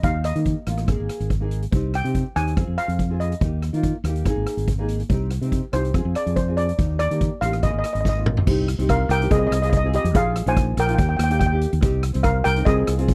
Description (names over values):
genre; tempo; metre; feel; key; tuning
calypso; 142 BPM; 4/4; swing 54% on 16ths; unclear; A4 = 440 Hz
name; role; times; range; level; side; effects
steel pan; melody; 0.0-13.1 s; G4 to Ab5; -26 LUFS; equal; none
nylon-string guitar; accompaniment; 0.0-13.1 s; Bb3 to Bb4; -31 LUFS; equal; double-tracked
fingered electric bass; bass; 0.0-13.1 s; Ab1 to Eb3; -25 LUFS; equal; none
street-band drum kit; drums; 0.0-13.1 s; crash cymbal, hi-hat, kick drum, rim click, snare drum, toms; -26 LUFS; equal; none
room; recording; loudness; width
little or no reverb; dry, close 1970s-style studio recording; -21 LUFS; mono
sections
0.0-8.5 A section; 8.5-13.1 B section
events
drum fill 8.0-8.5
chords
0.0 Eb; 0.9 Absus2; 1.7 Cm; 2.6 Fm; 3.4 Eb; 4.3 Absus2; 5.1 Cm; 5.9 Fm; 6.8 Ebmaj7; 7.6 Absus2; 8.5 Cm7; 9.3 Fm/C; 10.1 Bb7sus4; 11.0 Eb; 11.8 Cm7